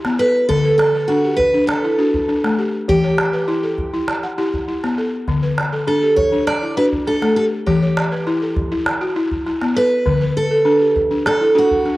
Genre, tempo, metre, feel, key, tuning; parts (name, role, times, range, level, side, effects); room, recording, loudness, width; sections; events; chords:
west african traditional, West African string and xylophone music; 100 BPM; 4/4; straight; D major; A4 = 440 Hz
balafon; arpeggios; 0.0-12.0 s; D3 to F#5; -19 LUFS; left 2 dB
calabash; percussion; 0.0-11.9 s; -25 LUFS; right 1 dB
picked steel-string acoustic guitar; melody; 0.2-12.0 s; F#4 to D5; -17 LUFS; right 1 dB; cassette tape
moderate spring reverb, RT60 2.4 s; home recording on cassette; -15 LUFS; side -18 dB against mid
0.0-12.0 A section
0.5 D; 2.9 Em; 5.3 D; 7.7 Em; 10.1 D